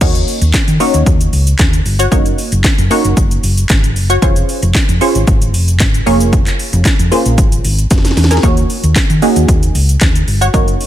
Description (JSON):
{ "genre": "dance-pop", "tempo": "114 BPM", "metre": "4/4", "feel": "straight", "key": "Eb dorian", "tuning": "A4 = 436 Hz", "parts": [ { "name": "punchy chord stab", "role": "accompaniment", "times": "0.0-10.9 s", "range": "Bb3 to Db5", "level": "-15 LUFS", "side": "right 1 dB", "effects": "chorus, phaser, sidechain pumping" }, { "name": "hollow-body short-scale fingered electric bass", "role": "bass", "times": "0.0-10.7 s", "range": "F1 to Eb3", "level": "-13 LUFS", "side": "equal", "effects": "sidechain pumping" }, { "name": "house drum kit", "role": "drums", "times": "0.0-10.9 s", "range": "crash cymbal, handclaps, hi-hat, kick drum, shaker, snare drum", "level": "-13 LUFS", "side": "equal", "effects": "overdrive" } ], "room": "little or no reverb", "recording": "none", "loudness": "-9 LUFS", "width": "side -12 dB against mid", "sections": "0.0-10.9 A section", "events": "drum fill 7.9-8.4", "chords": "0.0 Ebm7; 2.1 Gb6; 4.2 Dbmaj7/F; 6.1 Bbm7/F; 8.4 Ebm7" }